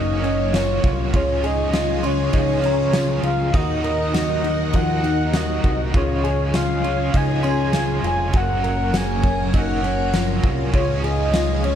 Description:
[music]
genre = dream pop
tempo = 100 BPM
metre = 4/4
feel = straight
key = Db major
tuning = A4 = 440 Hz
[part]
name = soft octave-layered synth lead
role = melody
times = 0.0-11.8 s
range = Db5 to Ab5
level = -24 LUFS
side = equal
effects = chorus, digital delay
[part]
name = cranked stack guitar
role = accompaniment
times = 0.0-11.8 s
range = Gb2 to Ab4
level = -30 LUFS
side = right 4 dB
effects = overdrive, tremolo, lush chorus
[part]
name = string machine, violins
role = sustained chords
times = 0.0-11.8 s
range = Db3 to Gb5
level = -27 LUFS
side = equal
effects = ensemble chorus
[part]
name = mellow electric guitar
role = arpeggios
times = 0.0-11.8 s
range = F3 to Bb4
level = -26 LUFS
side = left 5 dB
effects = analog chorus, digital delay
[part]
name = fat analog bass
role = bass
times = 0.0-11.8 s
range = F1 to Eb2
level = -24 LUFS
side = equal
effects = none
[part]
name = synth chime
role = texture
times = 0.0-8.6 s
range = Bb5 to F6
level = -38 LUFS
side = right 4 dB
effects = none
[part]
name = huge arena drum kit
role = drums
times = 0.2-11.8 s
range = kick drum, ride cymbal, snare drum, tambourine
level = -24 LUFS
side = equal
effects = none
[sound]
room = studio reverb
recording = dark, warm production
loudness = -18 LUFS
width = side -9 dB against mid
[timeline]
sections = 0.0-11.8 A section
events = none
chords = 0.0 Gb; 1.1 Db; 3.5 Ebm; 5.9 Db; 8.3 Gb; 10.7 Db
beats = 0.54 | 1.14 1.74 2.34 2.94 | 3.54 4.14 4.74 5.34 | 5.94 6.54 7.14 7.74 | 8.34 8.94 9.54 10.14 | 10.74 11.34

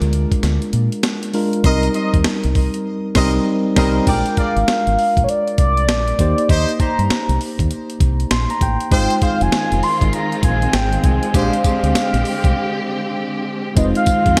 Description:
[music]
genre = R&B, new jack swing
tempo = 99 BPM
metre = 4/4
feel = swing 63% on 16ths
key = unclear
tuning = A4 = 440 Hz
[part]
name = tine electric piano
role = accompaniment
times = 0.0-14.4 s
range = G3 to C6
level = -24 LUFS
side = equal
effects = none
[part]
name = deep dub fingered electric bass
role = bass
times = 0.0-14.3 s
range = F1 to Bb2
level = -21 LUFS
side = equal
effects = none
[part]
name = breakbeat sampler-style drum kit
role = drums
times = 0.0-14.4 s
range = crash cymbal, hi-hat, kick drum, snare drum, tambourine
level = -22 LUFS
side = equal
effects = gated reverb
[part]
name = warm horn section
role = stabs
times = 1.6-11.9 s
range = D4 to Eb5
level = -29 LUFS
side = equal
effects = digital delay
[part]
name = mellow horn-like synth lead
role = melody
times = 4.1-14.4 s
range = Db5 to C6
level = -23 LUFS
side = equal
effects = chorus
[part]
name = warm symphonic string section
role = sustained chords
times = 8.9-14.4 s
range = D3 to G4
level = -26 LUFS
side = equal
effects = none
[sound]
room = moderate lush hall reverb, RT60 1.8 s, digital ambience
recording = bright 1980s-style digital production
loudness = -17 LUFS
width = mono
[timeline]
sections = 0.0-4.1 A section; 4.1-13.8 B section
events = band accent 2.9-4.1; tine electric piano fill 8.0-8.9; break 12.6-13.8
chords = 0.0 Bb7; 1.6 Cm7; 4.1 Bb7; 6.2 Eb6; 8.9 Ab6; 11.3 Bb13 (rootless); 13.8 Fm7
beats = 0.43 1.04 | 1.64 2.25 2.85 3.46 | 4.07 4.67 5.28 5.89 | 6.49 7.10 7.70 8.31 | 8.92 9.52 10.13 10.73 | 11.34 11.95 12.55 13.16 | 13.76 14.37

